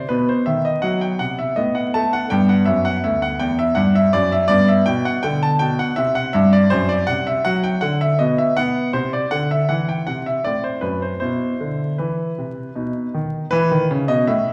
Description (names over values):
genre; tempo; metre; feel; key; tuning
classical-period piano sonatina; 81 BPM; 3/4; straight; E minor; A4 = 440 Hz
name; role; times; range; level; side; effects
clear baby grand piano; solo; 0.0-14.5 s; D2 to A5; -19 LUFS; equal; none
room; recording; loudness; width
wet recital hall reverb, RT60 1.4 s; heard from further back in the room, vinyl crackle; -19 LUFS; mono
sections
0.0-13.5 A section; 13.5-14.5 A section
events
none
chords
0.1 B; 1.6 B7/A; 2.3 Em; 4.5 G; 6.0 C5; 6.7 D9/F#; 8.2 N.C.; 8.9 C; 10.4 F#dim/A; 11.2 E5/B; 12.7 B; 13.5 E5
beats
| 0.09 0.83 1.57 | 2.30 3.04 3.77 | 4.50 5.23 5.97 | 6.71 7.44 8.18 | 8.92 9.66 10.41 | 11.18 11.96 12.73 | 13.50 14.25